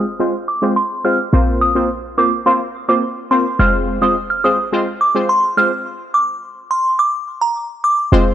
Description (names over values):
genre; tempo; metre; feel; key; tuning
dancehall; 106 BPM; 4/4; straight; F dorian; A4 = 440 Hz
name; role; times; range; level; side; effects
synth brass stab; accompaniment; 0.0-8.3 s; Ab3 to C5; -18 LUFS; left 1 dB; chorus, low-pass filter
short 808-style bass; bass; 0.0-8.3 s; F1 to Bb1; -17 LUFS; equal; none
glassy synth bell; melody; 0.5-7.9 s; Bb5 to F6; -16 LUFS; right 1 dB; chorus, low-pass filter
room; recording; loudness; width
light reverb, digital ambience; dry, gritty hardware recording; -14 LUFS; side -11 dB against mid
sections
0.0-8.1 A section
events
filter sweep 0.0-8.1; stop 5.9-8.1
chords
0.0 Fm; 1.3 Bbsus2; 3.6 Fm; 5.9 N.C.